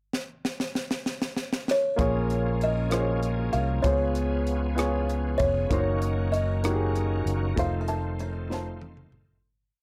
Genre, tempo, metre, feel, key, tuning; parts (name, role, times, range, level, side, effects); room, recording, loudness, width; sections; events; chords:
slow gospel; 64 BPM (dotted quarters); 6/8; straight; Bb minor; A4 = 439 Hz
crisp fusion drum kit; drums; 0.1-9.3 s; hi-hat, kick drum, rim click, snare drum, toms; -32 LUFS; equal
buzzing kalimba; melody; 1.7-9.2 s; Db5 to Bb5; -32 LUFS; equal
warm upright piano; accompaniment; 2.0-9.5 s; Bb2 to Db5; -32 LUFS; equal
bright tonewheel organ; sustained chords; 2.0-9.4 s; Eb3 to Ab4; -40 LUFS; equal; slow rotary speaker, chorus vibrato
mellow French horn section; sustained chords; 2.0-9.4 s; Eb3 to Db4; -43 LUFS; equal
fingered electric bass; bass; 2.0-9.4 s; F1 to Db2; -30 LUFS; equal
little or no reverb; dry, gritty hardware recording; -27 LUFS; mono
0.1-2.0 pickup bar; 2.0-9.4 verse
drum fill 0.1-2.0, 8.5-9.4; fade-out 7.6-9.4
0.1 N.C.; 2.0 Bbm7; 3.8 Db7; 5.7 Gb6; 7.6 F7